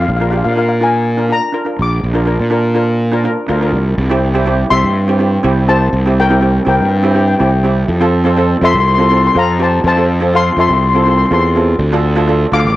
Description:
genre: calypso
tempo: 123 BPM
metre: 4/4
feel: straight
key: unclear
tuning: A4 = 440 Hz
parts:
  - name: steel pan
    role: melody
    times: 0.0-12.8 s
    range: Bb4 to D6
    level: -15 LUFS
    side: left 4 dB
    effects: cassette tape
  - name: fuzz fingered electric bass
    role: bass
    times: 0.0-12.8 s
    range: A1 to Bb2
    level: -13 LUFS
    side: equal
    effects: overdrive
  - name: steel pan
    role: accompaniment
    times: 0.2-12.8 s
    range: C4 to Bb4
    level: -16 LUFS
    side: right 2 dB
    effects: cassette tape
room: light reverb, studio ambience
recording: home recording on cassette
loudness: -10 LUFS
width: side -16 dB against mid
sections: 0.0-4.0 A section; 4.0-12.8 B section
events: none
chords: 0.1 Bb; 4.0 C; 7.9 F; 11.8 Dm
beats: | 0.08 0.57 1.05 1.54 | 2.03 2.52 3.01 3.50 | 3.98 4.47 4.96 5.45 | 5.93 6.42 6.91 7.40 | 7.89 8.38 8.86 9.35 | 9.84 10.33 10.82 11.31 | 11.80 12.29

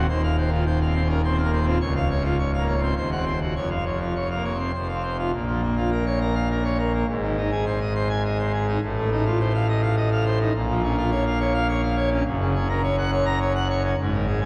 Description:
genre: classical, organ toccata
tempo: 104 BPM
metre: 3/4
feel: straight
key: Bb minor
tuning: A4 = 440 Hz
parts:
  - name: pipe organ, full organ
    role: solo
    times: 0.0-14.5 s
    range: Db1 to Bb5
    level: -23 LUFS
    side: equal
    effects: none
room: wet church reverb, RT60 3.4 s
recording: worn, warbling old tape, cassette tape, warbly pitch drift, lossy compression artefacts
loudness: -23 LUFS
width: mono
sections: 0.0-5.3 A section; 5.3-14.5 B section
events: none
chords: 0.1 F5/Eb; 1.8 Bbm/Db; 3.0 Cdim/Eb; 3.6 Bbm/F; 4.7 F5; 5.3 Bbm; 7.1 Ab; 8.8 F7/A; 10.5 Bbm; 12.3 Gb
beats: | 0.09 0.66 1.23 | 1.80 2.38 2.96 | 3.56 4.15 4.74 | 5.33 5.92 6.50 | 7.08 7.67 8.24 | 8.82 9.40 9.97 | 10.54 11.11 11.69 | 12.26 12.83 13.40 | 13.98

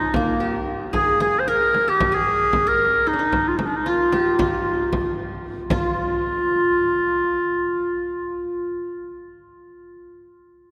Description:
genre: Turkish makam ensemble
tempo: 226 BPM (eighths)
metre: 9/8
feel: straight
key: F makam huseyni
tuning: A4 = 440 Hz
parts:
  - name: clear clarinet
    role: melody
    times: 0.0-8.9 s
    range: Bb3 to C5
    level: -22 LUFS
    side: equal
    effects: none
  - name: qanun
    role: second line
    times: 0.0-9.6 s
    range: Bb3 to Bb4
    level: -31 LUFS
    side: equal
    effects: none
  - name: frame drum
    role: percussion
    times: 0.1-6.0 s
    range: none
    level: -30 LUFS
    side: equal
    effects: none
room: wet cathedral reverb, RT60 5.3 s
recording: recorded in a church or concert hall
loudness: -21 LUFS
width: mono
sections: 0.0-5.7 A section; 5.7-8.1 B section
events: none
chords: none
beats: 0.13 0.40 0.67 | 0.93 1.20 1.46 1.73 2.00 2.26 2.53 2.79 3.06 | 3.32 3.59 3.86 4.12 4.39 4.65 4.92 5.18 5.45 | 5.71 5.98 6.25 6.51 6.78 7.04 7.31 7.57 7.84

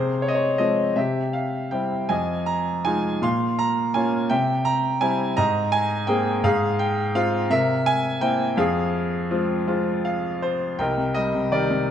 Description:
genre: classical, lyrical solo piano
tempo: 55 BPM (dotted quarters)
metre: 6/8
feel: uneven beats, rubato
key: F minor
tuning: A4 = 440 Hz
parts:
  - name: bright baby grand piano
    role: solo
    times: 0.0-11.9 s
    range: C2 to C6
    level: -20 LUFS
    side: equal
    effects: none
room: moderate scoring stage reverb, RT60 1.6 s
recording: nothing above 10.3 kHz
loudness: -20 LUFS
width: side -9 dB against mid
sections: 0.0-10.8 A section; 10.8-11.9 B section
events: grand piano fill 9.7-10.8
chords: 0.0 Fm/C; 1.0 C; 2.1 Fm7; 3.2 Bbm; 4.3 C; 5.4 Abadd9; 6.4 Fm/Ab; 7.5 C7; 8.6 Fm; 10.8 Cm7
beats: 0.96 | 2.09 3.22 | 4.30 5.37 | 6.44 7.50 | 8.58 9.68 | 10.79 11.90

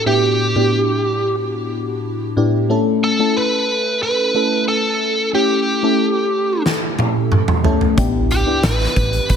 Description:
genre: 1980s-style pop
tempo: 91 BPM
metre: 4/4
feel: straight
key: A mixolydian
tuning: A4 = 440 Hz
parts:
  - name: biting lead guitar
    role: melody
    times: 0.0-9.4 s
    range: G4 to B4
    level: -19 LUFS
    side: equal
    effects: overdrive, digital delay
  - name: FM electric piano with soft pad layer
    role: accompaniment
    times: 0.0-9.4 s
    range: A2 to A4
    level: -18 LUFS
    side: left 1 dB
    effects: chorus, phaser
  - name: huge arena drum kit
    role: drums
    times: 6.7-9.4 s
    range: hi-hat, kick drum, snare drum, toms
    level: -17 LUFS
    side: right 1 dB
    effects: none
  - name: solid FM bass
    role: bass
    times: 8.0-9.4 s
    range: A1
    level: -20 LUFS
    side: equal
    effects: none
room: light reverb, small room ambience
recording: none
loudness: -15 LUFS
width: side -7 dB against mid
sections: 0.0-9.4 A section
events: drum fill 6.7-8.0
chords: 0.0 G6/A; 2.7 A; 8.0 G6/A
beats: | 0.06 0.72 1.38 2.04 | 2.70 3.36 4.02 4.68 | 5.34 6.00 6.66 7.32 | 7.98 8.64 9.29

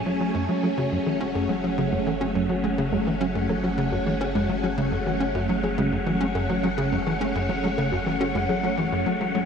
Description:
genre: ambient, sequencer-driven space music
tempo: 105 BPM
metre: 4/4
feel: straight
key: F# minor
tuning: A4 = 439 Hz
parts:
  - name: phased string machine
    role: sustained chords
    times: 0.0-9.5 s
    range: F#3 to C#5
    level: -26 LUFS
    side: equal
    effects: ensemble chorus, phaser
  - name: warm sub bass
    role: bass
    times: 0.0-9.5 s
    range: F#1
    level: -36 LUFS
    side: equal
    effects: none
  - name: wind-like tuned noise texture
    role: texture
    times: 0.0-9.5 s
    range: F#5 to G#5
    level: -32 LUFS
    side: left 4 dB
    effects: built-in reverb
  - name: tight sequencer bass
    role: riff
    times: 0.1-9.4 s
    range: F#2 to C#4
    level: -27 LUFS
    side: equal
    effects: analog chorus, ping-pong delay
  - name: warbly dusty pluck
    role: arpeggios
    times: 0.4-9.4 s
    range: F#3 to A4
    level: -30 LUFS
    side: moving between left 3 dB and right 5 dB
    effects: chorus, auto-pan, ping-pong delay
room: wet huge ambient reverb, RT60 7.8 s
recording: none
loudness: -22 LUFS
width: side -6 dB against mid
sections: 0.0-9.5 A section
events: none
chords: 0.0 F#madd9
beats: | 0.35 0.92 1.50 2.07 | 2.64 3.21 3.78 4.35 | 4.92 5.50 6.07 6.64 | 7.21 7.78 8.35 8.92

